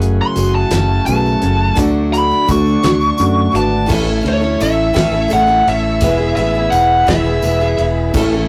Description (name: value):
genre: folk rock and heartland rock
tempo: 56 BPM (dotted quarters)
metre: 6/8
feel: straight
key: A major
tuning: A4 = 440 Hz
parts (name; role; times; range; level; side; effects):
- picked steel-string acoustic guitar; accompaniment; 0.0-8.5 s; F#2 to A4; -22 LUFS; equal; none
- warm concert grand piano; accompaniment; 0.0-8.4 s; A3 to E5; -29 LUFS; equal; none
- tonewheel organ; sustained chords; 0.0-8.5 s; E4 to C#6; -32 LUFS; equal; slow rotary speaker
- mellow electric guitar; riff; 0.0-8.5 s; E2 to G#4; -22 LUFS; equal; none
- fingered electric bass; bass; 0.0-8.4 s; E1 to F#2; -20 LUFS; equal; none
- damped 70s drum kit; drums; 0.0-8.3 s; crash cymbal, hi-hat, kick drum, ride cymbal, snare drum; -24 LUFS; equal; none
- tambourine; percussion; 0.0-8.3 s; none; -37 LUFS; equal; none
- bluesy overdriven lead guitar; melody; 0.2-7.8 s; C#5 to C#6; -18 LUFS; equal; distortion
room: wet booth ambience, RT60 0.2 s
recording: rough rehearsal-room recording, warm saturation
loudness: -14 LUFS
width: mono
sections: 0.0-3.9 A section; 3.9-8.5 B section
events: lead electric guitar solo 0.0-3.9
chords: 0.0 F#madd9; 1.8 D; 3.9 A; 6.0 E